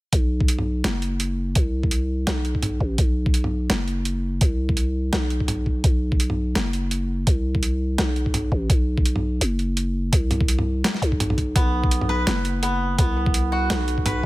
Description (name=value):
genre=half-time drum and bass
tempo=168 BPM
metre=4/4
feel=swing 56% on 16ths, half-time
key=unclear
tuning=A4 = 440 Hz
part: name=growling 808-style bass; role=bass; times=0.1-14.3 s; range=F#1 to C2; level=-23 LUFS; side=equal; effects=none
part: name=boom bap sampler-style drum kit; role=drums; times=0.1-14.1 s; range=hi-hat, snare drum, toms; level=-26 LUFS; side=equal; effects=overdrive
part: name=electronic kick drum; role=drums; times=0.1-14.3 s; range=none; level=-21 LUFS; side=equal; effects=overdrive
part: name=koto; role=arpeggios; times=11.6-14.3 s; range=B3 to B4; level=-25 LUFS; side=right 1 dB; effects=tape echo
room=digital ambience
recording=none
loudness=-20 LUFS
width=side -19 dB against mid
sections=0.1-14.3 A section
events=none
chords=0.1 B5